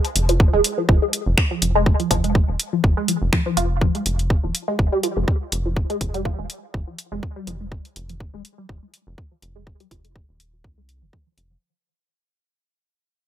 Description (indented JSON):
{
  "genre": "minimal techno",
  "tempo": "123 BPM",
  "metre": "4/4",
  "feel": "swing 55% on 16ths",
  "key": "F minor",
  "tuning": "A4 = 440 Hz",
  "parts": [
    { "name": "punchy analog drum machine", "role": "drums", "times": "0.0-11.5 s", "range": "finger snaps, hi-hat", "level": "-23 LUFS", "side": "equal", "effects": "none" },
    { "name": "rubbery square bass", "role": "bass", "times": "0.2-11.6 s", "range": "Eb1 to C2", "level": "-24 LUFS", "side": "equal", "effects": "tube saturation, sidechain pumping" },
    { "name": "resonant blip pluck", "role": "riff", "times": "0.3-11.6 s", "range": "F3 to F4", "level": "-24 LUFS", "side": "equal", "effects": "phaser, analog chorus, sidechain pumping, dub echo" },
    { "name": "electronic kick drum", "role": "drums", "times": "0.4-11.2 s", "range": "none", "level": "-19 LUFS", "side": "equal", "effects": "none" }
  ],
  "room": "little or no reverb",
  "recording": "none",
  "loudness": "-18 LUFS",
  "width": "side -11 dB against mid",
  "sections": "0.0-11.6 A section",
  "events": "fade-out 0.0-11.6; filter sweep on synth arpeggio sound 0.0-11.6",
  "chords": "none"
}